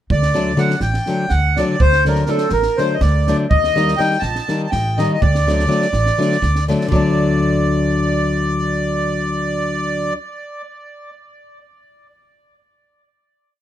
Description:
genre	balkan folk, Balkan wedding band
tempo	246 BPM (eighths)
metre	7/8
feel	straight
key	unclear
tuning	A4 = 439 Hz
part	accordion	melody	0.1-10.1 s	A4 to A5	-20 LUFS	right 1 dB	plate reverb, tape echo
part	upright bass	bass	0.1-10.2 s	A1 to Eb2	-20 LUFS	equal	none
part	compact cocktail drum kit	percussion	0.1-7.2 s	kick drum, snare drum	-23 LUFS	right 2 dB	none
part	flamenco guitar	accompaniment	0.3-10.2 s	D3 to Eb4	-18 LUFS	left 3 dB	none
room	light reverb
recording	close, detailed microphones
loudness	-15 LUFS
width	side -11 dB against mid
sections	0.1-6.9 A section; 6.9-10.3 final chord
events	none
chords	0.1 D; 3.5 Eb; 5.2 D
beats	| 0.10 0.34 0.59 0.83 1.07 1.32 1.56 | 1.80 2.05 2.29 2.54 2.78 3.02 3.27 | 3.51 3.76 4.00 4.24 4.49 4.73 4.97 | 5.22 5.46 5.70 5.95 6.19 6.43 6.68 | 6.92 7.16 7.40 7.65 7.89 8.13 8.37 | 8.61 8.85 9.10 9.34 9.58 9.82 10.06

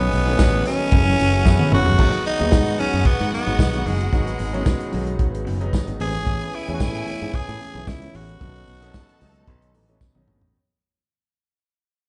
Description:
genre	disco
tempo	112 BPM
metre	4/4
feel	straight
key	unclear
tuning	A4 = 440 Hz
part	growling tenor saxophone	melody	0.0-10.0 s	G#3 to G#4	-27 LUFS	equal	none
part	clear symphonic string section	second line	0.0-10.2 s	F#4 to A5	-36 LUFS	equal	none
part	mellow electric guitar	accompaniment	0.0-10.5 s	E3 to A4	-34 LUFS	equal	none
part	warm concert grand piano	accompaniment	0.0-10.6 s	D#3 to D#4	-31 LUFS	equal	none
part	dark French horn section	sustained chords	0.0-10.5 s	F#3 to E5	-36 LUFS	equal	none
part	fingered electric bass	bass	0.0-10.5 s	F#1 to A2	-26 LUFS	equal	none
part	warm soul drum kit	drums	0.1-10.5 s	crash cymbal, hi-hat, kick drum, snare drum, toms	-22 LUFS	equal	none
part	tambourine	percussion	0.4-10.1 s	none	-45 LUFS	equal	none
room	moderate large studio reverb, RT60 1.3 s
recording	band playing live in one room, nothing above 10.6 kHz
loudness	-20 LUFS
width	mono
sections	0.0-2.0 A section; 2.0-10.5 B section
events	drum fill 1.5-2.0, 10.0-10.5; fade-out 2.0-10.5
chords	0.0 B7; 0.9 F#m7; 2.0 G#m7; 6.0 Amaj7; 8.4 B7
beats	0.39 0.92 1.46 | 1.99 2.52 3.06 3.59 | 4.13 4.66 5.20 5.73 | 6.26 6.80 7.33 7.87 | 8.40 8.94 9.47 10.01

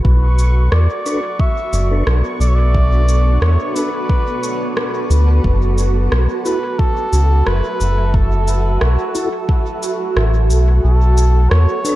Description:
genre	ambient dub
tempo	89 BPM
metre	4/4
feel	straight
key	B minor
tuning	A4 = 440 Hz
part	trumpet with cup mute	melody	0.0-12.0 s	F#4 to E5	-24 LUFS	equal	dub echo
part	granular cloud pad	sustained chords	0.0-12.0 s	B3 to E5	-23 LUFS	right 2 dB	built-in reverb, vintage 12-bit sampler grit
part	round analog bass	bass	0.0-11.7 s	F#1 to E2	-12 LUFS	equal	none
part	electronic kick drum	drums	0.0-9.6 s	none	-16 LUFS	equal	none
part	bubbling stepped-filter texture	texture	0.0-10.9 s	C#6	-33 LUFS	right 2 dB	chorus, built-in reverb
part	electronic shaker and rim click	drums	0.4-12.0 s	none	-24 LUFS	equal	dub echo
part	mellow tonewheel organ	stabs	1.1-12.0 s	D4 to B4	-27 LUFS	left 1 dB	none
room	digital ambience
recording	dark, warm production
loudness	-13 LUFS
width	side -16 dB against mid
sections	0.0-10.8 A section; 10.8-12.0 B section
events	fade-in on ambient pad 0.0-10.8; band accent 10.2-10.5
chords	0.1 Bm7; 5.4 F#m7; 10.8 B7(no3)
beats	| 0.05 0.72 1.40 2.07 | 2.75 3.42 4.10 4.77 | 5.44 6.12 6.79 7.47 | 8.14 8.81 9.49 10.16 | 10.84 11.51

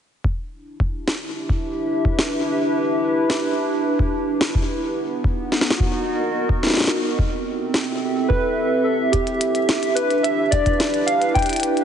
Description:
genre	IDM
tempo	108 BPM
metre	4/4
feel	straight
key	unclear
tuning	A4 = 440 Hz
part	warbly tape-like pad	sustained chords	1.0-11.8 s	B3 to E5	-22 LUFS	right 1 dB	chorus, built-in reverb, sidechain pumping
part	electronic kick drum	drums	0.2-11.5 s	none	-21 LUFS	equal	none
part	glitchy drum kit	drums	1.1-11.8 s	hi-hat, snare drum	-23 LUFS	left 1 dB	overdrive, ping-pong delay
part	warbly lo-fi synth keys	melody	8.3-11.8 s	G4 to G5	-21 LUFS	right 1 dB	chorus
room	moderate lush hall reverb, RT60 2.4 s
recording	heavily compressed radio sound, nothing above 10.6 kHz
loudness	-18 LUFS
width	side -8 dB against mid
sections	0.2-9.1 A section; 9.1-11.8 B section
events	none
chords	0.2 Em7; 4.7 Bmaj7; 6.9 Am7/C; 9.1 Em7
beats	| 0.24 0.80 1.35 1.91 | 2.47 3.02 3.58 4.13 | 4.69 5.24 5.80 6.36 | 6.91 7.47 8.02 8.58 | 9.13 9.69 10.24 10.80 | 11.36

